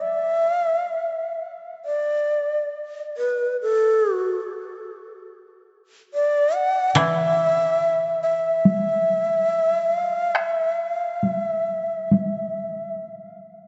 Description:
japanese traditional, Japanese chamber music; 63-73 BPM; 4/4; rubato; E suspended pentatonic; A4 = 440 Hz
breathy bright long shakuhachi; melody; 0.0-13.0 s; A4 to F#5; -24 LUFS; equal; delay
koto; accompaniment; 7.0-9.5 s; E3; -26 LUFS; equal
taiko ensemble; percussion; 7.0-12.3 s; -25 LUFS; equal
wet church reverb, RT60 3.2 s; dreamy mix soaked in reverb, nothing above 7.9 kHz; -22 LUFS; mono
0.0-13.7 A section

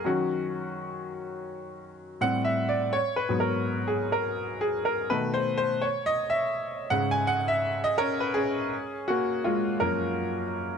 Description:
R&B; 83 BPM; 4/4; swing 57% on 16ths; A4 = 440 Hz
clear grand piano; solo; 0.0-10.8 s; F#2 to G#5; -25 LUFS; equal
light reverb; nothing above 11.0 kHz; -25 LUFS; side -6 dB against mid
0.0-8.7 A section; 8.7-10.8 B section
grand piano solo 0.0-8.7, 8.7-10.8
0.0 D#m7; 2.2 Am7; 2.9 G#m7; 5.1 B7; 5.8 G#m11; 8.7 F#maj9

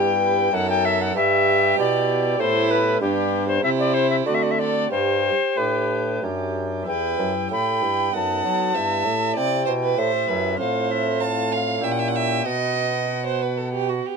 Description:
classical, baroque-style sonata movement with continuo; 96 BPM; 3/4; straight; E minor, G major from 3.0 s, E minor from 6.9 s; A4 = 444 Hz
alto recorder; melody; 0.0-14.0 s; G4 to B5; -23 LUFS; left 5 dB
warm violin; second line; 0.0-14.2 s; D4 to A5; -25 LUFS; right 11 dB
chamber organ, principal chorus; accompaniment; 0.0-14.2 s; E2 to A4; -28 LUFS; equal
warm bassoon; bass; 0.0-14.0 s; E2 to F#3; -26 LUFS; right 2 dB
light reverb; close, detailed microphones; -19 LUFS; side -5 dB against mid
0.0-6.9 A section; 6.9-14.2 A section
0.0 Em; 0.5 B7/F#; 1.2 Em/G; 3.0 G; 3.6 C; 4.3 D7; 4.9 G; 6.9 Em; 8.1 B7/F#; 8.8 Em/G; 10.6 F/A; 11.8 A#dim7; 12.5 B

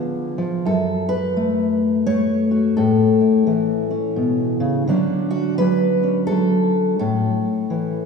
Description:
folk, solo fingerstyle acoustic guitar; 85 BPM; 3/4; swing 62% on 8ths; A major; A4 = 440 Hz
fingerpicked steel-string acoustic guitar; solo; 0.0-8.1 s; F#2 to C#5; -17 LUFS; left 1 dB
wet concert hall reverb, RT60 2.3 s; recorded in a church or concert hall, studio ambience; -17 LUFS; side -5 dB against mid
0.0-8.1 A section
0.0 C#7 (rootless); 0.7 F#m; 2.8 A; 4.9 Dmaj7; 7.0 A

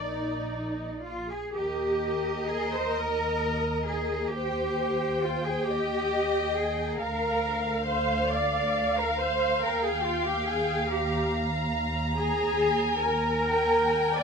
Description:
classical, slow romantic movement for string orchestra; 37-48 BPM (dotted quarters); 6/8; rubato; Eb major; A4 = 439 Hz
muted studio violin section; melody; 0.0-14.2 s; D5 to Bb5; -34 LUFS; left 3 dB
muted chamber violin section; second line; 0.0-14.2 s; Bb4 to Ab5; -31 LUFS; left 1 dB
muted symphonic viola section; accompaniment; 0.0-14.2 s; Eb4 to D5; -31 LUFS; left 1 dB
muted chamber double bass section; bass; 0.0-14.2 s; Bb1 to Eb2; -34 LUFS; right 1 dB
muted studio cello section; bass; 0.0-14.2 s; Eb4 to D5; -30 LUFS; right 2 dB
moderate studio reverb, RT60 0.7 s; minimal, uncompressed stereo recording; -25 LUFS; side -5 dB against mid
0.0-1.5 A section; 1.5-14.2 B section
0.0 Bb; 1.5 Eb; 4.3 Fm7/Eb; 7.0 Bb/D; 9.6 Eb; 12.2 Ebadd11

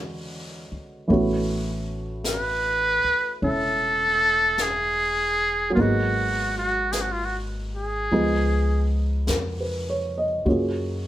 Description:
jazz ballad; 51 BPM; 4/4; swing 67% on 8ths; A4 = 440 Hz
dark upright piano; accompaniment; 0.0-11.1 s; D3 to D#5; -25 LUFS; right 1 dB
upright bass; bass; 0.0-11.1 s; E1 to F#2; -28 LUFS; left 1 dB
jazz brush drum kit; drums; 1.1-11.1 s; brushed snare drum, hi-hat, snare drum; -34 LUFS; left 2 dB
trumpet with metal mute; melody; 2.3-8.9 s; E#4 to B4; -22 LUFS; equal
moderate large studio reverb, RT60 0.9 s; band playing live in one room; -21 LUFS; side -13 dB against mid
0.0-11.1 A section
0.0 E13; 1.1 A6; 5.8 G#m7; 8.1 C#9; 10.5 F#maj9

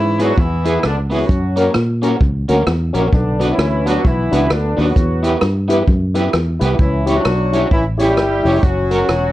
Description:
ska; 131 BPM; 4/4; swing 61% on 8ths; A4 = 440 Hz
warm horn section; melody; 0.0-9.3 s; D3 to G4; -19 LUFS; left 1 dB
fingered electric bass; bass; 0.0-9.3 s; E1 to A#2; -18 LUFS; equal
electric guitar at the edge of break-up; accompaniment; 0.2-9.0 s; A#3 to C#5; -20 LUFS; right 2 dB; tremolo
tonewheel organ; stabs; 0.2-9.0 s; C#4 to C#5; -20 LUFS; left 3 dB; overdrive, chorus vibrato, slow rotary speaker
vintage drum kit; drums; 0.2-9.2 s; hi-hat, kick drum, rim click; -18 LUFS; equal
moderate studio reverb, RT60 0.6 s; cassette tape; -13 LUFS; side -15 dB against mid
0.0-9.3 A section
0.0 E; 1.3 F#; 3.1 Bm; 5.0 Em; 6.8 C#dim; 8.6 F#

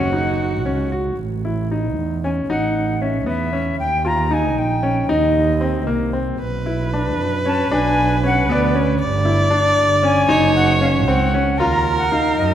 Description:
contemporary instrumental, chamber music in an uneven meter; 230 BPM (eighths); 5/8; straight; A4 = 440 Hz
jazz flute; melody; 0.0-12.5 s; D5 to Bb5; -22 LUFS; left 1 dB
clear viola; second line; 0.0-0.9, 6.4-12.5 s; Gb4 to D5; -21 LUFS; equal
clear concert grand piano; arpeggios; 0.0-12.5 s; Bb3 to Gb4; -20 LUFS; left 1 dB
dark double bass; bass; 0.0-12.5 s; Gb1 to Gb2; -21 LUFS; right 3 dB
wet concert hall reverb, RT60 2.5 s; -16 LUFS; side -10 dB against mid
0.0-1.2 A section; 1.2-11.6 B section
0.0 Gb5; 1.2 A; 3.8 Eb; 6.4 Cbm; 9.0 G5; 10.3 Gb5; 11.6 Ebsus2

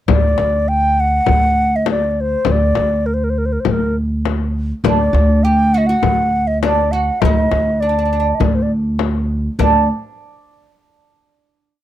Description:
Persian modal ensemble; 101 BPM; 4/4; straight; D dastgah homayun; A4 = 440 Hz
baroque flute; melody; 0.1-9.9 s; Bb4 to G5; -17 LUFS; equal
upright bass; bass; 0.1-9.9 s; D2; -16 LUFS; right 1 dB
frame drum; percussion; 0.1-9.9 s; -20 LUFS; left 9 dB
oud; second line; 4.8-9.9 s; D4 to G4; -21 LUFS; right 6 dB
little or no reverb; dry, close 1970s-style studio recording; -13 LUFS; side -12 dB against mid
0.1-9.6 A section; 9.6-11.8 final note

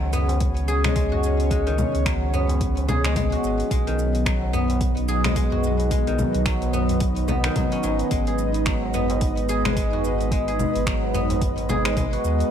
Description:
organic downtempo; 109 BPM; 4/4; swing 58% on 16ths; A4 = 440 Hz
airy breathy pad; sustained chords; 0.0-12.5 s; F#3 to D#5; -26 LUFS; right 2 dB; chorus, sidechain pumping
guzheng; arpeggios; 0.0-12.5 s; D#3 to G#4; -26 LUFS; left 2 dB; digital delay
warm sub bass; bass; 0.0-12.4 s; G#1 to D#2; -24 LUFS; equal; sidechain pumping
tabla; percussion; 0.0-11.9 s; -34 LUFS; left 2 dB
deep house drum kit; drums; 0.1-12.5 s; congas, finger snaps, hi-hat, shaker; -29 LUFS; left 2 dB; overdrive
electronic kick drum; drums; 0.4-12.1 s; -26 LUFS; equal; overdrive
light reverb; -20 LUFS; side -9 dB against mid
0.0-12.5 A section
0.0 B

